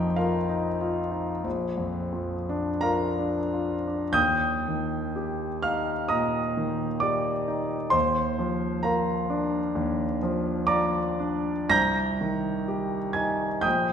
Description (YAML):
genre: classical, romantic nocturne for solo piano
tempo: 42-68 BPM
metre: 4/4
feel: rubato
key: Eb major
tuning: A4 = 441 Hz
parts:
  - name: warm concert grand piano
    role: solo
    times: 0.0-13.9 s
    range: Bb1 to Bb6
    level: -24 LUFS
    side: equal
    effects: none
room: wet scoring stage reverb, RT60 1.8 s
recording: recorded in a church or concert hall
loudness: -24 LUFS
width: side -8 dB against mid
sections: 0.0-4.2 A section; 4.2-13.9 B section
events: none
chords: 0.0 Bbsus4; 1.4 Bb; 4.2 Eb; 7.9 Bb/Eb; 11.7 Cm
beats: 0.19 1.45 2.83 | 4.15 5.17 6.12 7.04 | 7.94 8.86 9.76 10.69 | 11.73 12.69 13.65